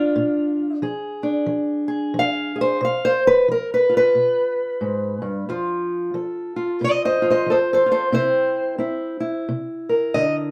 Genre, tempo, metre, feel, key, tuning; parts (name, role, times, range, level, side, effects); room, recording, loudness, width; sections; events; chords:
acoustic country blues, solo or duo; 90 BPM; 4/4; swing 61% on 8ths; A4 = 440 Hz
fingerpicked steel-string acoustic guitar; solo; 0.0-10.5 s; F2 to F5; -21 LUFS; equal
light reverb; -21 LUFS; mono
0.0-10.5 A section
steel-string acoustic guitar solo 0.0-10.5
0.0 Bb7; 2.8 G7b9 (rootless); 5.5 F; 8.1 C7